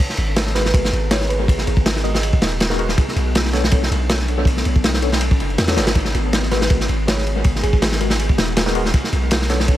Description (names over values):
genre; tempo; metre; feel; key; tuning
drum and bass, jungle; 161 BPM; 4/4; straight; G# minor; A4 = 441 Hz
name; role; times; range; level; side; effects
ethereal airy pad; sustained chords; 0.3-9.8 s; G#3 to A#5; -28 LUFS; equal; ensemble chorus, built-in reverb, vintage 12-bit sampler grit
crunchy breakbeat drum kit; drums; 0.0-9.8 s; kick drum, ride cymbal, snare drum; -18 LUFS; equal; analog delay
long sustained 808-style bass; bass; 0.2-9.8 s; D#1 to E2; -21 LUFS; equal; none
thumb-piano-like synth pluck; melody; 0.6-2.6, 6.5-7.8 s; G#4 to D#5; -29 LUFS; right 1 dB; chorus, dub echo
tine electric piano; stabs; 0.6-9.8 s; G#3 to C#5; -27 LUFS; left 2 dB; overdrive, fast stereo tremolo, dub echo
room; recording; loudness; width
light reverb, studio reverb; echo-heavy mix; -15 LUFS; side -13 dB against mid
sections
0.0-9.8 A section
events
drop 0.0-9.8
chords
0.0 G#m9; 3.0 Bm9; 6.0 G#m9; 8.9 Bm9